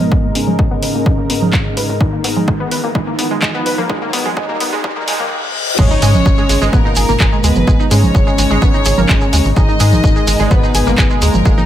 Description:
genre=melodic techno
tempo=127 BPM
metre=4/4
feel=straight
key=G# minor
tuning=A4 = 440 Hz
part: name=fat analog lead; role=melody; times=0.0-11.7 s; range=A#3 to D#4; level=-21 LUFS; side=equal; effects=wide subtle chorus, tape echo
part: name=lush unison pad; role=sustained chords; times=0.0-11.7 s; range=G#3 to A#5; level=-26 LUFS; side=left 2 dB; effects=chorus, phaser, sidechain pumping
part: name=tight sequencer bass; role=bass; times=0.0-11.5 s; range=G#1 to G#2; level=-16 LUFS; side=equal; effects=sidechain pumping, high-pass filter
part: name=analog drone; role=drone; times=0.0-11.7 s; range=G#2 to G#3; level=-26 LUFS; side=equal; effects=none
part: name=punchy analog drum machine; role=drums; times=0.0-11.7 s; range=congas, crash cymbal, handclaps, hi-hat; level=-19 LUFS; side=right 2 dB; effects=sidechain pumping on hats, sidechain pumping on perc, sidechain pumping on cymbals
part: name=riser, reverse cymbal and impact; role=sound effects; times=1.8-7.7 s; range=none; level=-24 LUFS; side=left 1 dB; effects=none
part: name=analog pluck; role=arpeggios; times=0.1-11.6 s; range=G#3 to G#5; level=-20 LUFS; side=right 1 dB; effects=chorus, sidechain pumping, ping-pong delay
part: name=electronic kick drum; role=drums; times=0.1-11.6 s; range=none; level=-14 LUFS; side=equal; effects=none
part: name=warm studio violin section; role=second line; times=5.8-11.7 s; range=A#4 to D#5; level=-22 LUFS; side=left 2 dB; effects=sidechain pumping, ping-pong delay
part: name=shekere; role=percussion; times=5.8-11.7 s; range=none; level=-25 LUFS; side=right 4 dB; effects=none
room=light reverb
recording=high-pass filter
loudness=-11 LUFS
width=side -11 dB against mid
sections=0.0-5.8 A section; 5.8-11.7 B section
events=build-up 0.0-5.8; filter sweep on synth pluck 0.0-5.8; filter sweep on analog synth lead 0.0-5.8; filter sweep 0.0-5.8; riser 1.8-5.3; reverse cymbal 4.8-5.8; drop 5.8-11.7; impact 5.8-7.7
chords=0.0 G#madd9

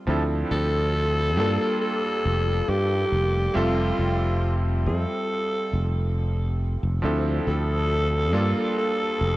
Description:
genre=vaporwave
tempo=69 BPM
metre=4/4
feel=straight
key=F major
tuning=A4 = 440 Hz
part: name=clear electric grand piano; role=accompaniment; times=0.0-9.4 s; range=F3 to E5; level=-28 LUFS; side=right 1 dB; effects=wide subtle chorus
part: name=sustaining fretless electric bass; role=bass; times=0.1-9.4 s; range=F1 to G2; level=-24 LUFS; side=equal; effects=none
part: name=growling alto saxophone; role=melody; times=0.5-9.4 s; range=F4 to A4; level=-26 LUFS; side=equal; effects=tape echo
room=light reverb, small room ambience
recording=cassette tape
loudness=-21 LUFS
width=side -17 dB against mid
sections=0.0-9.4 A section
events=none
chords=0.1 Dm9; 1.4 Gm9; 3.6 Fmaj9; 7.0 Dm9; 8.3 Gm9

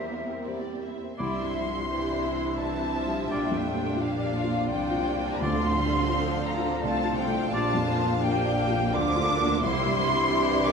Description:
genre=cinematic, emotional film score for orchestra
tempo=85 BPM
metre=3/4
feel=rubato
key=unclear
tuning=A4 = 440 Hz
part: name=rich studio violin section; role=melody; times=0.0-10.7 s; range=Bb4 to D6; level=-34 LUFS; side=left 3 dB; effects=none
part: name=flute section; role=second line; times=0.0-10.7 s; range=E5 to D6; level=-33 LUFS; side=left 1 dB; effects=none
part: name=rich studio violin section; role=second line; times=0.0-10.7 s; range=Bb3 to F5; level=-34 LUFS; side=left 2 dB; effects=none
part: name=felt-muted upright piano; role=accompaniment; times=0.0-10.7 s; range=Bb1 to D5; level=-33 LUFS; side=left 1 dB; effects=none
part: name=rich studio viola section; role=accompaniment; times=0.0-10.7 s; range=E3 to G4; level=-33 LUFS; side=right 4 dB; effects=none
part: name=concert harp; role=arpeggios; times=0.0-10.7 s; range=Bb2 to D6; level=-36 LUFS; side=left 6 dB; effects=none
part: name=rich studio cello section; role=bass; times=0.0-10.7 s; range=E2 to D3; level=-33 LUFS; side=right 4 dB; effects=none
part: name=bright clarinet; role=second line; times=1.2-10.7 s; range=E4 to F4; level=-38 LUFS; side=right 1 dB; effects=none
part: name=clear oboe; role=second line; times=1.2-10.7 s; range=D5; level=-37 LUFS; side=left 2 dB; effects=none
part: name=mellow French horn section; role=sustained chords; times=1.2-10.7 s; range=E3 to E4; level=-33 LUFS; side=left 1 dB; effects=none
part: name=rich studio double bass section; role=bass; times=1.2-10.7 s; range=Bb1 to D2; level=-34 LUFS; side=right 3 dB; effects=none
part: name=timpani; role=percussion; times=5.4-6.4 s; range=D3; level=-38 LUFS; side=left 1 dB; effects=none
room=wet scoring stage reverb, RT60 1.6 s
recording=minimal, uncompressed stereo recording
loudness=-24 LUFS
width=side -5 dB against mid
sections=0.0-1.2 A section; 1.2-10.7 B section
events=none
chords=0.0 C7/E; 1.2 Cadd9; 3.3 Gm7/Bb; 5.4 Dm7; 7.5 Bbmaj7; 9.6 Cadd9

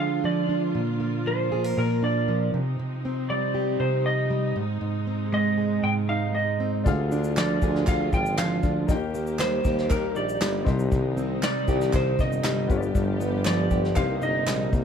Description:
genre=acoustic pop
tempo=118 BPM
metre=4/4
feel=straight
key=C minor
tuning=A4 = 440 Hz
part: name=electric slide guitar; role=melody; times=0.0-14.7 s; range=Bb4 to G5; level=-28 LUFS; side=right 2 dB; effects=none
part: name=fingerpicked plugged-in steel-string acoustic guitar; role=accompaniment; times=0.0-14.8 s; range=G2 to Bb4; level=-26 LUFS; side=right 1 dB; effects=none
part: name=warm studio string section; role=sustained chords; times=0.0-14.8 s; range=C3 to G4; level=-35 LUFS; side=equal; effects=none
part: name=bright upright piano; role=accompaniment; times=6.8-14.8 s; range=Bb3 to G5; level=-35 LUFS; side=left 8 dB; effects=none
part: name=warm tuba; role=bass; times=6.9-14.8 s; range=G1 to Eb2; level=-29 LUFS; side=left 1 dB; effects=none
part: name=vintage brush drum kit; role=drums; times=6.9-14.8 s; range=kick drum, shaker, snare drum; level=-27 LUFS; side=left 1 dB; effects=none
part: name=group handclap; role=percussion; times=7.4-14.6 s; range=none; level=-37 LUFS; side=right 2 dB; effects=none
room=light reverb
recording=none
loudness=-22 LUFS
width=side -7 dB against mid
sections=0.0-14.8 A section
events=none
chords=0.0 Ddim; 0.8 Bb; 2.5 Cmadd9; 4.6 Ab; 6.9 Ddim; 8.9 Eb; 10.7 Cmadd9; 12.7 G7; 14.0 Cm7

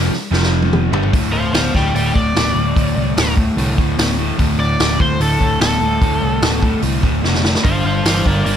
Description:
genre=blues rock power trio and southern rock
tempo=148 BPM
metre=4/4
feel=straight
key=D minor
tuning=A4 = 440 Hz
part: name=crunchy overdriven guitar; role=riff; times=0.0-8.6 s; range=D2 to G3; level=-18 LUFS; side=equal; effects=none
part: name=vintage muted picked electric bass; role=bass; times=0.0-8.6 s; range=D1 to C2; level=-20 LUFS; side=equal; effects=none
part: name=vintage drum kit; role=drums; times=0.1-8.6 s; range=hi-hat, kick drum, snare drum, toms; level=-19 LUFS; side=equal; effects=none
part: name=overdriven slide guitar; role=melody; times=1.3-8.6 s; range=A4 to G5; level=-20 LUFS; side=equal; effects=none
room=little or no reverb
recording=none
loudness=-13 LUFS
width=side -9 dB against mid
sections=0.0-1.1 A section; 1.1-8.6 B section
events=drum fill 0.3-1.1, 7.2-7.6; electric slide guitar solo 1.1-8.6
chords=0.3 F5; 0.9 G5; 1.1 D5; 7.6 Gm

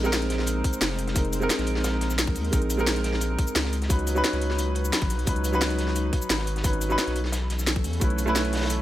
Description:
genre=liquid drum and bass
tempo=175 BPM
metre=4/4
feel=straight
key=Bb phrygian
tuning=A4 = 440 Hz
part: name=warm concert grand piano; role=accompaniment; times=0.0-8.8 s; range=Gb3 to Cb5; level=-28 LUFS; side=right 1 dB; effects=digital delay
part: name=airy breathy pad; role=sustained chords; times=0.0-8.8 s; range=E3 to C5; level=-36 LUFS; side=left 1 dB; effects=chorus, sidechain pumping
part: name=saturated sub bass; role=bass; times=0.0-8.8 s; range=F1 to E2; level=-28 LUFS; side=equal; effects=none
part: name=drum and bass drum kit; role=drums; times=0.0-8.8 s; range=cabasa, hi-hat, snare drum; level=-28 LUFS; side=equal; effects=small room ambience
part: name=crunchy breakbeat drum kit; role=drums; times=0.1-8.8 s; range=hi-hat, snare drum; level=-35 LUFS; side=left 1 dB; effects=high-pass filter on hats, small room ambience, high-pass filter on snare, high-pass filter on room
part: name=electronic kick drum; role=drums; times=0.6-8.1 s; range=none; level=-25 LUFS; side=equal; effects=small room ambience
room=studio reverb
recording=none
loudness=-22 LUFS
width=side -14 dB against mid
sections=0.0-8.8 A section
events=none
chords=0.0 Bb9sus4; 3.7 Db9sus4; 7.2 B9sus4

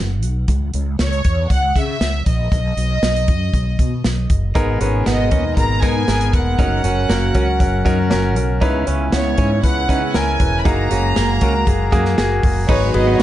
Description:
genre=piano-driven pop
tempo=118 BPM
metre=4/4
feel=straight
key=unclear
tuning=A4 = 440 Hz
part: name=fretless electric bass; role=bass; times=0.0-13.2 s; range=E1 to C#3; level=-19 LUFS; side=equal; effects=ensemble chorus
part: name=natural country drum kit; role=drums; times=0.2-13.2 s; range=crash cymbal, hi-hat, kick drum, ride cymbal, snare drum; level=-19 LUFS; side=equal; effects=none
part: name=warm studio violin section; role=melody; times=1.0-13.2 s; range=C#5 to B5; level=-23 LUFS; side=equal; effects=none
part: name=clear baby grand piano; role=accompaniment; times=4.5-13.2 s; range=G#2 to C#5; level=-21 LUFS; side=left 1 dB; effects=none
part: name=chorused pulse-width pad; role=sustained chords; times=4.5-13.2 s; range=B2 to G#4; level=-27 LUFS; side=left 1 dB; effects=none
part: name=direct-recorded clean electric guitar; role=riff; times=4.6-13.2 s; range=A#3 to G#4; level=-25 LUFS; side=right 8 dB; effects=none
part: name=warm French horn section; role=second line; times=12.7-13.2 s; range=F#3 to F#4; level=-20 LUFS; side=right 1 dB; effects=none
room=light reverb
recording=dark, warm production, nothing above 11.0 kHz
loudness=-15 LUFS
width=side -13 dB against mid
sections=0.0-12.7 A section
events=none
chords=0.5 C#m; 2.5 B; 4.6 G#madd9; 6.6 F#; 8.6 C#m7; 10.7 F#add9; 12.7 G#m

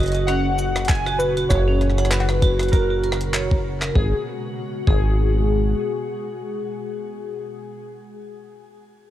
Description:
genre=IDM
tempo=98 BPM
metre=4/4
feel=swing 56% on 16ths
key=G# minor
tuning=A4 = 441 Hz
part: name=warbly lo-fi synth keys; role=melody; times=0.0-7.9 s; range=G#4 to G#5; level=-27 LUFS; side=left 1 dB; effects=chorus, analog delay, shimmer reverb
part: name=glassy FM pad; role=sustained chords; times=0.0-7.2 s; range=A#2 to F#4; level=-29 LUFS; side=left 1 dB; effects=ensemble chorus, built-in reverb, shimmer reverb
part: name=vibraphone with hard mallets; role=arpeggios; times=0.0-5.1 s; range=C#4 to F#5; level=-27 LUFS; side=right 2 dB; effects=tape echo, shimmer reverb
part: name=deep acid bass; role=bass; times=0.0-5.8 s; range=F#1 to G#1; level=-22 LUFS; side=equal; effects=none
part: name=jungle sampler-style drum kit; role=drums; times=0.0-3.9 s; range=cowbell, handclaps, hi-hat, rim click, shaker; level=-28 LUFS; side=equal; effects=overdrive, studio reverb
part: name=electronic kick drum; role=drums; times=0.9-5.1 s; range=none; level=-18 LUFS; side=equal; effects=overdrive, studio reverb
room=light reverb, digital ambience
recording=dry, gritty hardware recording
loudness=-18 LUFS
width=side -12 dB against mid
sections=0.0-4.0 A section; 4.0-6.4 B section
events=none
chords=0.0 F#; 4.0 G#m7

